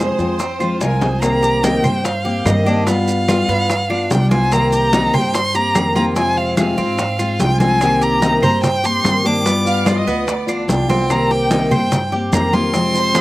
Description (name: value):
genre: latin, Cuban son and guajira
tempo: 146 BPM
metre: 4/4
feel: straight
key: C minor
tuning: A4 = 441 Hz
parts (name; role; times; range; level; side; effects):
- rich studio violin section; second line; 0.0-1.2, 9.7-13.2 s; Ab4 to F5; -23 LUFS; right 2 dB; slapback echo
- fingerpicked steel-string acoustic guitar; accompaniment; 0.0-13.2 s; C3 to G4; -19 LUFS; left 2 dB; slapback echo
- Cuban tres; arpeggios; 0.0-13.2 s; B3 to C5; -25 LUFS; right 3 dB; none
- upright bass; bass; 0.0-13.2 s; C2 to Ab2; -22 LUFS; right 1 dB; none
- bongos; percussion; 0.2-13.2 s; none; -26 LUFS; left 3 dB; none
- congas; percussion; 0.2-13.2 s; none; -22 LUFS; equal; none
- maracas; percussion; 0.2-13.2 s; none; -30 LUFS; right 5 dB; none
- claves; percussion; 0.6-13.2 s; none; -30 LUFS; right 1 dB; slapback echo
- warm violin; melody; 0.8-13.2 s; Eb5 to D6; -19 LUFS; equal; none
room: little or no reverb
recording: recorded outdoors, with no room sound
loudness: -14 LUFS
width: side -17 dB against mid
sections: 0.0-1.2 A section; 1.2-13.2 B section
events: drum fill 0.8-1.2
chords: 0.0 Fm; 1.2 Cm7; 2.9 G7; 4.5 Cm7; 6.2 Fm; 7.8 Cm7; 9.5 G7; 11.1 Cm7